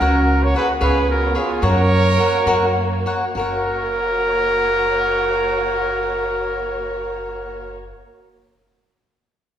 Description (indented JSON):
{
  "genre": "mexican folk, mariachi",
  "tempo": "65-75 BPM (dotted quarters)",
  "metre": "6/8",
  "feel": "rubato",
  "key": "F# major",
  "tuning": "A4 = 440 Hz",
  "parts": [
    { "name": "warm trumpet", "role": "melody", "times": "0.0-7.7 s", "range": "G#4 to C#5", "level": "-20 LUFS", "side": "right 1 dB", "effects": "none" },
    { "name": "warm trumpet", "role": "second line", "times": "0.0-7.7 s", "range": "E#4 to A#4", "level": "-25 LUFS", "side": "right 2 dB", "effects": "none" },
    { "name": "cavaquinho", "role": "accompaniment", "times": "0.0-8.0 s", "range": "F#4 to F#5", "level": "-22 LUFS", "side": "left 2 dB", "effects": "none" },
    { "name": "dark symphonic violin section", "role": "sustained chords", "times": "0.0-7.7 s", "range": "A#3 to C#5", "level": "-29 LUFS", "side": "left 1 dB", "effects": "none" },
    { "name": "upright bass", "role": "bass", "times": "0.0-7.9 s", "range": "F#1 to F#2", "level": "-22 LUFS", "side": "equal", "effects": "none" }
  ],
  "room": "wet recital hall reverb, RT60 1.5 s",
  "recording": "heard from further back in the room",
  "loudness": "-16 LUFS",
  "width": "side -10 dB against mid",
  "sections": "0.0-3.3 A section; 3.3-7.0 B section",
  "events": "slowing down 0.0-3.3",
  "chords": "0.0 F#/C#; 0.8 C#7; 1.6 F#"
}